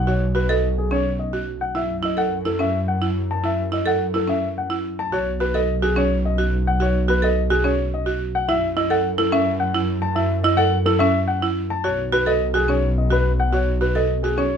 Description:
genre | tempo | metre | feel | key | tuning
classical, minimalist pattern music | 107 BPM | 3/4 | straight | F# dorian | A4 = 444 Hz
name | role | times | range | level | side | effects
warm grand piano | melody | 0.0-14.6 s | G#4 to A5 | -23 LUFS | left 6 dB | none
rich symphonic double bass section | bass | 0.0-14.6 s | B1 to F#2 | -23 LUFS | equal | none
buzzing marimba with medium hard mallets | arpeggios | 0.1-14.6 s | C#4 to A4 | -22 LUFS | right 6 dB | none
room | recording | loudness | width
light reverb | none | -18 LUFS | side -7 dB against mid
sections
0.0-14.6 A section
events
none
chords
0.0 Badd9; 1.8 F#7(no3); 5.1 Badd9; 8.5 F#m7; 11.8 B7sus2

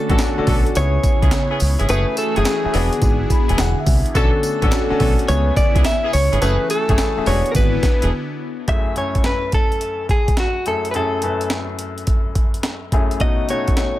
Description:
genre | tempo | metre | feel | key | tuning
R&B, new jack swing | 106 BPM | 4/4 | swing 67% on 16ths | F# minor | A4 = 440 Hz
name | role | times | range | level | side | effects
direct-recorded clean electric guitar | melody | 0.0-14.0 s | F#4 to E5 | -22 LUFS | equal | none
clear concert grand piano | accompaniment | 0.0-14.0 s | F#2 to B5 | -24 LUFS | left 4 dB | none
phased analog pad | sustained chords | 0.0-8.7 s | C#3 to G#4 | -26 LUFS | right 1 dB | phaser, chorus
warm horn section | stabs | 0.1-8.1 s | A3 to A4 | -29 LUFS | right 1 dB | none
deep dub fingered electric bass | bass | 0.1-8.1 s | E1 to C#2 | -19 LUFS | equal | none
breakbeat sampler-style drum kit | drums | 0.1-13.9 s | hi-hat, kick drum, snare drum, tambourine | -19 LUFS | equal | none
group handclap | percussion | 0.2-7.2 s | none | barely audible | none | none
room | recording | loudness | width
digital ambience | none | -16 LUFS | side -14 dB against mid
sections
0.0-8.7 A section; 8.7-14.0 B section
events
grand piano fill 3.0-4.2; break 8.1-8.7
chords
0.0 Bm7; 0.8 C#m7; 1.9 F#m9; 2.7 E7; 4.2 Bm7; 5.3 C#m7; 6.4 F#m9; 7.3 E7; 8.7 F#m7; 13.2 B7

